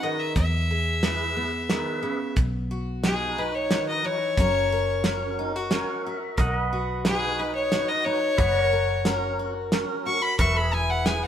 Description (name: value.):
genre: honky-tonk and classic country.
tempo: 90 BPM.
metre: 3/4.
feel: straight.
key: B major.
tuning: A4 = 440 Hz.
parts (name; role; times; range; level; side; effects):
clear fiddle; melody; 0.0-11.3 s; G#4 to C#6; -25 LUFS; left 2 dB; none.
picked steel-string acoustic guitar; accompaniment; 0.0-11.3 s; B2 to B4; -31 LUFS; left 1 dB; none.
tonewheel organ; accompaniment; 0.0-11.3 s; C#4 to G#5; -34 LUFS; right 3 dB; slow rotary speaker.
vintage muted fingered electric bass; bass; 0.4-11.3 s; E1 to E2; -29 LUFS; equal; none.
cloth-damped thuddy drum kit; drums; 0.4-11.2 s; hi-hat, kick drum, snare drum; -25 LUFS; right 1 dB; none.
pedal steel guitar; sustained chords; 6.4-11.3 s; G#4 to F#5; -31 LUFS; right 2 dB; none.
room: moderate stone room reverb, RT60 1.4 s.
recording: band playing live in one room.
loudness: -22 LUFS.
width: side -9 dB against mid.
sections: 0.0-11.3 A section.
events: fiddle solo 0.0-11.3; tonewheel organ fill 5.4-6.4.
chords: 0.4 E; 2.4 B; 4.4 F#; 6.4 B; 8.4 F#; 10.4 E.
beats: | 0.36 1.03 1.70 | 2.37 3.04 3.71 | 4.38 5.04 5.71 | 6.38 7.05 7.72 | 8.39 9.06 9.72 | 10.39 11.06.